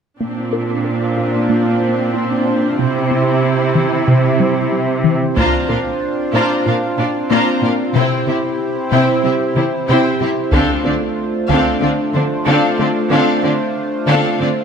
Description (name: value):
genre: cinematic, hybrid orchestral and electronic film score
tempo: 93 BPM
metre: 4/4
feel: straight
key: unclear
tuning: A4 = 440 Hz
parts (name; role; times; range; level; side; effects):
- rich symphonic viola section; accompaniment; 0.2-14.5 s; C4 to F4; -20 LUFS; right 2 dB; none
- chorused pulse-width pad; sustained chords; 0.2-14.6 s; A3 to C5; -19 LUFS; right 1 dB; none
- resonant blip pluck; arpeggios; 0.2-14.6 s; C3 to Bb4; -21 LUFS; left 2 dB; phaser
- rich symphonic cello section; bass; 0.2-14.5 s; Bb2 to D3; -20 LUFS; right 3 dB; none
- rich symphonic violin section; second line; 5.4-14.5 s; D4 to Bb5; -21 LUFS; left 5 dB; none
- taiko ensemble; drums; 5.4-6.6, 10.5-11.8 s; none; -21 LUFS; left 1 dB; none
room: moderate scoring stage reverb, RT60 1.9 s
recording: none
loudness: -14 LUFS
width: side -6 dB against mid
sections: 0.2-5.4 A section; 5.4-14.6 B section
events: none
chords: 0.2 Bbadd9; 2.8 C; 5.4 Bbadd9; 8.0 C; 10.5 Dm7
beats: | 0.21 0.85 1.50 2.14 | 2.79 3.44 4.08 4.72 | 5.37 6.01 6.66 7.31 | 7.95 8.60 9.24 9.89 | 10.53 11.18 11.82 12.47 | 13.11 13.76 14.40